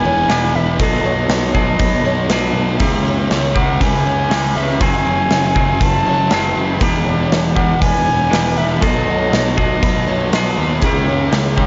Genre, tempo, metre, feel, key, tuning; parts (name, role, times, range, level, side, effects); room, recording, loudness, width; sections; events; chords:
rock, shoegaze and dream pop; 120 BPM; 4/4; straight; E major; A4 = 440 Hz
reedy concert flute; melody; 0.0-11.7 s; D#5 to A5; -23 LUFS; equal; tape echo
fingerpicked twelve-string acoustic guitar; arpeggios; 0.0-11.7 s; F#4 to C#5; -28 LUFS; equal; ensemble chorus, tape echo
thick fuzz guitar; riff; 0.0-11.7 s; E2 to C#4; -24 LUFS; equal; distortion, analog chorus
twangy electric guitar; riff; 0.0-11.7 s; F#2 to A4; -23 LUFS; equal; reverse reverb
fuzz picked electric bass; bass; 0.0-11.7 s; E1 to D#2; -22 LUFS; equal; overdrive
big rock drum kit; drums; 0.3-11.7 s; hi-hat, kick drum, snare drum; -22 LUFS; equal
light reverb; nothing above 7.6 kHz; -16 LUFS; mono
0.0-11.7 A section
0.0 Emaj7; 0.8 B7; 2.8 C#m7; 4.8 F#m7; 6.8 Emaj7; 8.8 B7; 10.8 C#m7